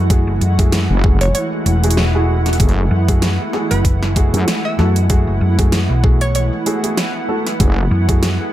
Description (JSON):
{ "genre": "glitch hop", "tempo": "96 BPM", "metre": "4/4", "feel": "swing 56% on 16ths", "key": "F# minor", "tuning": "A4 = 439 Hz", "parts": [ { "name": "warm analog pad", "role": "sustained chords", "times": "0.0-8.5 s", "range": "E3 to F#4", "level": "-26 LUFS", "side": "right 2 dB", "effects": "chorus, sidechain pumping" }, { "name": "hollow-body short-scale fingered electric bass", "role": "bass", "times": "0.0-8.4 s", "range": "E1 to F#2", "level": "-15 LUFS", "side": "equal", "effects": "none" }, { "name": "granular cloud pad", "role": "texture", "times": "0.0-8.5 s", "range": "E4 to F#5", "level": "-24 LUFS", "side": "right 2 dB", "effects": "built-in reverb, sidechain pumping" }, { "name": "dark baby grand piano", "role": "stabs", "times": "0.1-8.3 s", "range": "A3 to A4", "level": "-23 LUFS", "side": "equal", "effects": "vintage 12-bit sampler grit, sidechain pumping, digital delay" }, { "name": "dubstep drum kit", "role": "drums", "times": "0.1-8.4 s", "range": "hi-hat, snare drum", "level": "-22 LUFS", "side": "equal", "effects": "overdrive" }, { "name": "electronic kick drum", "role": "drums", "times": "0.1-8.2 s", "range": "none", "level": "-14 LUFS", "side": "equal", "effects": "overdrive" }, { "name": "wobble bass", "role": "bass", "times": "0.9-7.9 s", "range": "F#1 to F#2", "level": "-16 LUFS", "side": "equal", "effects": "chorus, tube saturation" }, { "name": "woody wave-folded pluck", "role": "melody", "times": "1.2-6.5 s", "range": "B4 to E5", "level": "-24 LUFS", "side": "right 1 dB", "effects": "chorus, digital delay" } ], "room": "light reverb", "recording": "none", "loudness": "-13 LUFS", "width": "side -13 dB against mid", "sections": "0.0-8.5 A section", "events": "none", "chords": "0.0 F#m9" }